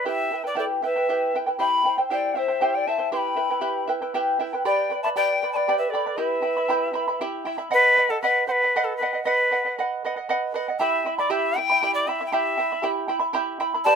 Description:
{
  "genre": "andean folk, Andean ensemble",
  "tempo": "78 BPM (dotted quarters)",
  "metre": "6/8",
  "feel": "straight",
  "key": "E minor",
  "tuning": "A4 = 440 Hz",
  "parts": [
    { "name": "bright quena", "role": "melody", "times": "0.0-14.0 s", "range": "A4 to C6", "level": "-22 LUFS", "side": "left 1 dB", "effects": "none" },
    { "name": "charango", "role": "accompaniment", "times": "0.0-14.0 s", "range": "E4 to B5", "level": "-25 LUFS", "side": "right 2 dB", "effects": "none" },
    { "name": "mellow hollow polished pan flute", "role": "second line", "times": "0.6-7.2, 13.8-14.0 s", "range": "A4 to G5", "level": "-26 LUFS", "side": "left 2 dB", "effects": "none" }
  ],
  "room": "moderate studio reverb, RT60 0.5 s",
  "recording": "minimal, uncompressed stereo recording",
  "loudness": "-21 LUFS",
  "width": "side -6 dB against mid",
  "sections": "0.0-7.7 A section; 7.7-14.0 B section",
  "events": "none",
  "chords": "0.0 Em; 1.6 C; 3.1 Em; 4.7 G; 6.2 Em; 7.7 B; 10.8 Em"
}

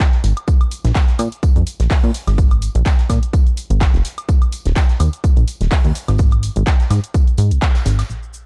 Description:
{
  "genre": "piano house",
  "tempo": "126 BPM",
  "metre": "4/4",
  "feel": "swing 55% on 16ths",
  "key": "unclear",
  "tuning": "A4 = 439 Hz",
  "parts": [
    { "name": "electronic kick drum", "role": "drums", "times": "0.0-7.7 s", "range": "none", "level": "-16 LUFS", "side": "equal", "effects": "overdrive" },
    { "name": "gated 80s drum kit", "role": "drums", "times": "0.0-8.1 s", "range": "hi-hat, snare drum, tambourine", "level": "-40 LUFS", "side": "equal", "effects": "high-pass filter on hats, high-pass filter on snare, high-pass filter on perc, high-pass filter on room" },
    { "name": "house drum kit", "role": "drums", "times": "0.0-8.4 s", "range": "cabasa, handclaps, hi-hat, woodblock", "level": "-29 LUFS", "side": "equal", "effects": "overdrive" },
    { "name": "plucky analog bass", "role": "bass", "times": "0.2-8.5 s", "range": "Eb1 to Bb2", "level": "-18 LUFS", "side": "equal", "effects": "tube saturation, sidechain pumping" }
  ],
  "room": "little or no reverb",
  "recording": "dark, warm production",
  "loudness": "-16 LUFS",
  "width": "mono",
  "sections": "0.0-8.1 A section",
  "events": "band accent 7.6",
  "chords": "none"
}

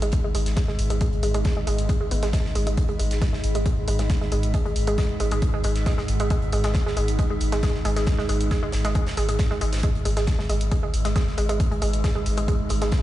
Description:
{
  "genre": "driving peak-time techno",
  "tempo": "136 BPM",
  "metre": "4/4",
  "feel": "straight",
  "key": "unclear",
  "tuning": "A4 = 440 Hz",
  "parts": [
    { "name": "analog pluck", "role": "riff", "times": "0.0-12.9 s", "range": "G#3 to B3", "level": "-29 LUFS", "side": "right 1 dB", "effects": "chorus, tube saturation, sidechain pumping, ping-pong delay" },
    { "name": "saturated sub bass", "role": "bass", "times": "0.0-12.9 s", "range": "G#1", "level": "-26 LUFS", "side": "equal", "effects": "overdrive, sidechain pumping, low-pass filter" },
    { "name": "metallic inharmonic drone", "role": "drone", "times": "0.0-13.0 s", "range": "G#2 to G#3", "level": "-30 LUFS", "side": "equal", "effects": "chorus, built-in reverb, sidechain pumping" },
    { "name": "electronic hi-hat", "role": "drums", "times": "0.0-13.0 s", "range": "none", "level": "-35 LUFS", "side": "equal", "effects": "sidechain pumping on hats, sidechain pumping on cymbals" },
    { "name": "electronic kick drum", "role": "drums", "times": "0.1-13.0 s", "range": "none", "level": "-24 LUFS", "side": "equal", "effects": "none" },
    { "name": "huge arena drum kit", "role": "drums", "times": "0.1-13.0 s", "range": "hi-hat, snare drum", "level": "-38 LUFS", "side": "right 2 dB", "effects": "high-pass filter on hats, high-pass filter on snare, high-pass filter on room" }
  ],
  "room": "little or no reverb",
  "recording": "played on a big sound system in a bare room, stone room reverb, nothing above 10.9 kHz",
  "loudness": "-21 LUFS",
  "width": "side -14 dB against mid",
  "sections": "0.0-13.0 A section",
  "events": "none",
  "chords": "none"
}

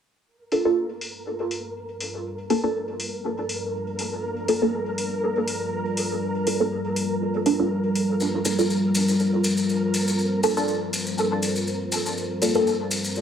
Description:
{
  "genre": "dub techno",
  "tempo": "121 BPM",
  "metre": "4/4",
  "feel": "swing 54% on 16ths",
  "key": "G minor",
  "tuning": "A4 = 440 Hz",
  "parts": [
    { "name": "deep dark ambient pad", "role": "sustained chords", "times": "1.6-13.2 s", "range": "G3 to D5", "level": "-26 LUFS", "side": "left 1 dB", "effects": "chorus, built-in reverb, vintage 12-bit sampler grit" },
    { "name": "flickering grainy texture", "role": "texture", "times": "0.3-13.2 s", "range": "Bb4", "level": "-31 LUFS", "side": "equal", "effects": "built-in reverb" },
    { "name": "filtered dub chord stab", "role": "stabs", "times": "0.5-12.7 s", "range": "Bb3 to A4", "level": "-25 LUFS", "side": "right 1 dB", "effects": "phaser, dub echo" },
    { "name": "electronic hi-hat", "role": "drums", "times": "0.5-13.0 s", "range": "none", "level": "-32 LUFS", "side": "left 1 dB", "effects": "overdrive, low-pass filter on hats, studio reverb" },
    { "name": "maracas", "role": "percussion", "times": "8.2-13.2 s", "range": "none", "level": "-30 LUFS", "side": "left 2 dB", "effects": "none" }
  ],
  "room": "moderate plate reverb, RT60 1.1 s",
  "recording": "echo-heavy mix",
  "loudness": "-22 LUFS",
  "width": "side -8 dB against mid",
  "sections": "0.3-13.2 A section",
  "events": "filter sweep on synth stab 0.3-13.2; filter sweep on ambient pad 0.3-13.2",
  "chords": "0.3 Gm7"
}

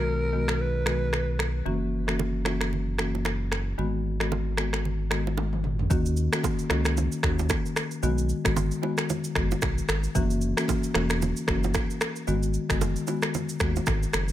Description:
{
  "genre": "afrobeats",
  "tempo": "113 BPM",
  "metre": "4/4",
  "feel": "swing 58% on 16ths",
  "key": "G# minor",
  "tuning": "A4 = 440 Hz",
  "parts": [
    { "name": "breathy alto saxophone", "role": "melody", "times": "0.0-1.4 s", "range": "A#4 to B4", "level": "-31 LUFS", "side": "right 1 dB", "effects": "ping-pong delay" },
    { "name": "marimba with medium mallets", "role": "accompaniment", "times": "0.0-13.8 s", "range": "D#3 to F#4", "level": "-29 LUFS", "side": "left 3 dB", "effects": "none" },
    { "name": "round analog bass", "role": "bass", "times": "0.0-14.3 s", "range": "E1 to D#2", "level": "-28 LUFS", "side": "equal", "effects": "none" },
    { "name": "deep house drum kit", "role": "drums", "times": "0.5-14.3 s", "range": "finger snaps, kick drum, rim click, shaker, toms", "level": "-28 LUFS", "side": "equal", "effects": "none" },
    { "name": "congas and bongos", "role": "percussion", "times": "1.7-14.0 s", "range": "none", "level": "-35 LUFS", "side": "right 8 dB", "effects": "none" }
  ],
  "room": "light reverb, small room ambience",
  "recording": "none",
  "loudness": "-24 LUFS",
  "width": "side -13 dB against mid",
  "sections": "0.0-5.9 A section; 5.9-14.3 B section",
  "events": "drum fill 5.4-5.9",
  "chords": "0.0 B6; 1.7 F#7; 3.8 G#m7; 5.9 D#m7; 8.0 B6; 10.2 F#7; 12.3 G#m7"
}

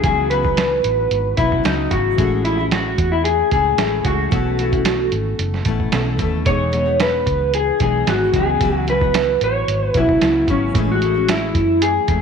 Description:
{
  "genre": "indie pop, bedroom pop",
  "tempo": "112 BPM",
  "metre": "4/4",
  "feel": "straight",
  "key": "unclear",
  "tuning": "A4 = 440 Hz",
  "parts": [
    { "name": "electric guitar through a small old amp", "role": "melody", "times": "0.0-12.2 s", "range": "C#4 to C#5", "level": "-18 LUFS", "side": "left 1 dB", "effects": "lush chorus, tape echo" },
    { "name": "nylon-string guitar", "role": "accompaniment", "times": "0.0-12.2 s", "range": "A2 to E4", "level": "-26 LUFS", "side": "left 9 dB", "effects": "wide subtle chorus, warbly pitch drift" },
    { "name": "warbly lo-fi synth keys", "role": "accompaniment", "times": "0.0-12.2 s", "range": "E3 to D#5", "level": "-29 LUFS", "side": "right 9 dB", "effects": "chorus" },
    { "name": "vintage muted fingered electric bass", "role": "bass", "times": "0.0-12.2 s", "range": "E1 to F#2", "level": "-22 LUFS", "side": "equal", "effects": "none" },
    { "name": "lo-fi sampler-style drum kit", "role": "drums", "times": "0.0-12.2 s", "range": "hi-hat, kick drum, snare drum", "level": "-22 LUFS", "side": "right 3 dB", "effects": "none" }
  ],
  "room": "moderate echo chamber reverb, RT60 1.5 s",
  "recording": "1960s-style stereo with parts hard left and right",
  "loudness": "-15 LUFS",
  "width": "side -6 dB against mid",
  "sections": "0.0-12.2 A section",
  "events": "none",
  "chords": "0.0 C#m11; 2.2 Amaj7; 4.3 B9sus4; 6.5 Emaj7; 8.3 C#m11; 10.7 Amaj7"
}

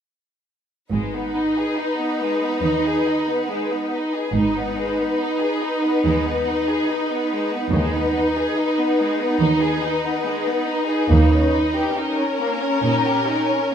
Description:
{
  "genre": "classical, slow romantic movement for string orchestra",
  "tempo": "70 BPM",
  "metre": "4/4",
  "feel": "rubato",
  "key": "G# minor",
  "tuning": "A4 = 440 Hz",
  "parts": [
    { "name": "rich studio violin section", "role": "melody", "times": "0.9-13.7 s", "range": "A#4 to B4", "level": "-25 LUFS", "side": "left 4 dB", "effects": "none" },
    { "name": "rich studio violin section", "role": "second line", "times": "0.9-13.7 s", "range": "G#3 to G#4", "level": "-25 LUFS", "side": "left 1 dB", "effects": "none" },
    { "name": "rich studio viola section", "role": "accompaniment", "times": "0.9-13.7 s", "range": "C#4 to D#4", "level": "-22 LUFS", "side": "right 2 dB", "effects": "none" },
    { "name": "rich studio cello section", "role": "bass", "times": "0.9-13.5 s", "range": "D#2 to A#2", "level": "-24 LUFS", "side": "right 2 dB", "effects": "none" },
    { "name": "warm studio double bass section", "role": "bass", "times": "0.9-11.8 s", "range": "G#1 to D#2", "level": "-22 LUFS", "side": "right 2 dB", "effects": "none" }
  ],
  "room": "wet recital hall reverb, RT60 1.5 s",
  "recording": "minimal, uncompressed stereo recording",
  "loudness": "-18 LUFS",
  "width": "side -8 dB against mid",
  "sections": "0.9-13.7 A section",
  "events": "none",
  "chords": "0.9 G#m; 7.7 G#m/D#; 11.1 D#7(no3)"
}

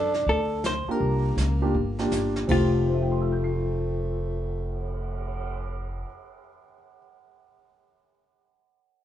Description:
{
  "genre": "jazz, small-group swing and bop",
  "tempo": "161 BPM",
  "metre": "4/4",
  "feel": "swing 66% on 8ths",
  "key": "F major",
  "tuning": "A4 = 441 Hz",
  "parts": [
    { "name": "hollow-body jazz guitar", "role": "melody", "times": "0.0-6.0 s", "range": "F4 to C5", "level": "-29 LUFS", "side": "left 5 dB", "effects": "plate reverb" },
    { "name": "growling tenor saxophone", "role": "second line", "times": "0.0-6.0 s", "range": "A3 to D4", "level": "-33 LUFS", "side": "right 2 dB", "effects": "none" },
    { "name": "upright bass", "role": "bass", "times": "0.0-6.0 s", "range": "F1 to Gb2", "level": "-27 LUFS", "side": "equal", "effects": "none" },
    { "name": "jazz brush drum kit", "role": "drums", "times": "0.1-5.4 s", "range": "brushed snare drum, crash cymbal, cymbal swell, hi-hat, kick drum, snare drum", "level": "-34 LUFS", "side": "right 1 dB", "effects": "none" },
    { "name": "warm upright piano", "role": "accompaniment", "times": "0.9-7.0 s", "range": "F2 to C7", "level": "-28 LUFS", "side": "right 1 dB", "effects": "none" }
  ],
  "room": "wet club reverb, RT60 0.5 s",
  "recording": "heard from further back in the room, nothing above 11.0 kHz",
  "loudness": "-24 LUFS",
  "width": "side -11 dB against mid",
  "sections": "0.0-2.5 A section; 2.5-5.5 B section",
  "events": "none",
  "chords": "0.0 Gm9 (rootless); 1.0 C9sus4; 2.5 Fmaj9"
}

